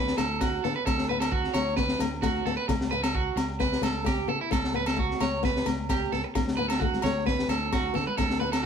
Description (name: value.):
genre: highlife guitar band.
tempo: 131 BPM.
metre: 4/4.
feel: straight.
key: D major.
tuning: A4 = 440 Hz.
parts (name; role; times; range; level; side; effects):
flamenco guitar; accompaniment; 0.0-8.6 s; A3 to B3; -33 LUFS; left 8 dB; none.
electric guitar at the edge of break-up; arpeggios; 0.0-8.7 s; E4 to C#5; -29 LUFS; right 4 dB; none.
fingered electric bass; bass; 0.0-8.7 s; C#2 to D3; -34 LUFS; equal; none.
crunchy breakbeat drum kit; drums; 0.1-8.6 s; kick drum, snare drum; -29 LUFS; left 1 dB; none.
agogo bells; percussion; 0.2-8.6 s; none; -35 LUFS; right 2 dB; none.
congas; percussion; 6.9-8.2 s; none; -38 LUFS; right 1 dB; none.
room: moderate stone room reverb, RT60 1.0 s.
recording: band playing live in one room.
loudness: -24 LUFS.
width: side -7 dB against mid.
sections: 0.0-8.7 A section.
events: none.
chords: 0.0 D; 2.7 A/C#; 6.4 D.